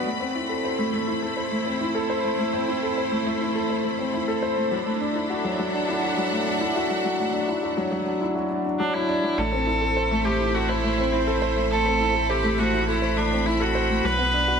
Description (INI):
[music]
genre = piano and strings electronica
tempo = 103 BPM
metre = 4/4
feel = straight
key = A dorian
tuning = A4 = 444 Hz
[part]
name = rich studio string section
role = sustained chords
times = 0.0-14.6 s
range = A3 to B5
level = -28 LUFS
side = equal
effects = shimmer reverb
[part]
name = dark baby grand piano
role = riff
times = 0.0-14.6 s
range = F#3 to C5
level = -24 LUFS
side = left 1 dB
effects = shimmer reverb, digital delay
[part]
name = rich viola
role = melody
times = 8.8-14.6 s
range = C4 to B4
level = -24 LUFS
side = right 1 dB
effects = shimmer reverb
[part]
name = warm sub bass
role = bass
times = 9.4-14.6 s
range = A1 to B1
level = -28 LUFS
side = right 1 dB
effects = none
[sound]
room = wet lush hall reverb, RT60 2.1 s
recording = none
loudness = -21 LUFS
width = side -6 dB against mid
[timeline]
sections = 0.0-9.4 A section; 9.4-14.6 B section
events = build-up 0.0-9.4; drop 9.4-14.6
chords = 0.1 Am; 4.7 Dadd9; 9.4 Am; 14.0 Bm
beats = | 0.06 0.64 1.23 1.81 | 2.39 2.97 3.56 4.14 | 4.72 5.30 5.89 6.47 | 7.05 7.63 8.22 8.80 | 9.38 9.96 10.55 11.13 | 11.71 12.29 12.88 13.46 | 14.04